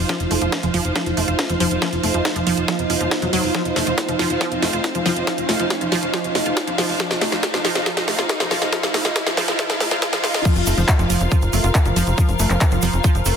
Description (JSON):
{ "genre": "psychedelic trance", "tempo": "139 BPM", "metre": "4/4", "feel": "straight", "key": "unclear", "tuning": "A4 = 440 Hz", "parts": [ { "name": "evolving wavetable pad", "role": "sustained chords", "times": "0.0-13.4 s", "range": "Eb4 to Bb4", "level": "-27 LUFS", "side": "right 2 dB", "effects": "chorus, built-in reverb, phaser, sidechain pumping" }, { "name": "tight sequencer bass", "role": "bass", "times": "0.0-13.3 s", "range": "Eb1 to F1", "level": "-24 LUFS", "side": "equal", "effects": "none" }, { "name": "riser", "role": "sound effects", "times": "0.3-10.5 s", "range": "none", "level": "-30 LUFS", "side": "left 1 dB", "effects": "none" }, { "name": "dark studio string section", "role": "texture", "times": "0.0-13.4 s", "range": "F4 to F5", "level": "-27 LUFS", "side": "right 1 dB", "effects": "sidechain pumping" }, { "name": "wide unison pluck", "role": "riff", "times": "0.1-13.3 s", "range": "F3 to F4", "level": "-24 LUFS", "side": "moving between left 4 dB and right 4 dB", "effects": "auto-pan, sidechain pumping, ping-pong delay" }, { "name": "drum and bass drum kit", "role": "drums", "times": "0.1-13.3 s", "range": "crash cymbal, handclaps, hi-hat, snare drum", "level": "-23 LUFS", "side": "equal", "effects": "overdrive" }, { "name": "electronic kick drum", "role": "drums", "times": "0.1-13.1 s", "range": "none", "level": "-19 LUFS", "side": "equal", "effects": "overdrive, high-pass filter on kick" }, { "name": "egg shaker", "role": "percussion", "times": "10.5-13.3 s", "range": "none", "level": "-30 LUFS", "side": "right 3 dB", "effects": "none" } ], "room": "moderate lush hall reverb, RT60 2.1 s", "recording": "dense, heavily limited modern master, high-pass filter", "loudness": "-17 LUFS", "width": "side -7 dB against mid", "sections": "0.0-10.5 A section; 10.5-13.4 B section", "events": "build-up 0.0-10.5; drum fill 0.0-10.5; filter sweep on synth arpeggio sound 0.0-10.5; filter sweep on ambient pad 0.0-10.5; riser 0.3-10.5; drop 10.5-13.4", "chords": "0.0 F5" }